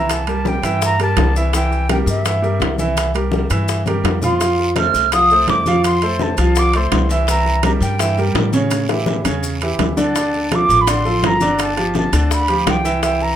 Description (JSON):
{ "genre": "Afro-Cuban jazz", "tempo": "167 BPM", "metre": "4/4", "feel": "straight", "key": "C mixolydian", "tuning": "A4 = 440 Hz", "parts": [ { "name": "mellow silver concert flute", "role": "melody", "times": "0.0-13.4 s", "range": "E5 to F6", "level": "-19 LUFS", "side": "right 1 dB", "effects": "none" }, { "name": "clear baby grand piano", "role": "accompaniment", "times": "0.0-13.3 s", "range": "Db3 to F5", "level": "-19 LUFS", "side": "right 2 dB", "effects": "none" }, { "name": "upright bass", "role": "bass", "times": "0.0-13.4 s", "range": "G1 to A2", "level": "-20 LUFS", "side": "left 1 dB", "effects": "none" }, { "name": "bongos", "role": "percussion", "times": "0.1-13.4 s", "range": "none", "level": "-26 LUFS", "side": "left 8 dB", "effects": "none" }, { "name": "congas", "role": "percussion", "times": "0.1-13.4 s", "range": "none", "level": "-26 LUFS", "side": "left 2 dB", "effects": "none" }, { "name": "maracas", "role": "percussion", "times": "0.1-13.4 s", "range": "none", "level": "-30 LUFS", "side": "left 6 dB", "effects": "none" }, { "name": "timbales", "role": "percussion", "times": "0.1-13.2 s", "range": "none", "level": "-25 LUFS", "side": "right 6 dB", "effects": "none" }, { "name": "guiro", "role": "percussion", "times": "4.4-13.4 s", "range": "none", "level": "-32 LUFS", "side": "right 3 dB", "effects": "none" } ], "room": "moderate club reverb, RT60 0.5 s", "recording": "minimal, uncompressed stereo recording", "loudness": "-14 LUFS", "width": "side -10 dB against mid", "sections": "0.0-13.4 A section", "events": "drum fill 3.9-4.4, 8.7-10.2", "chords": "0.0 C7; 4.4 F; 7.3 C7; 8.7 A7; 10.2 Dm7; 11.6 G9" }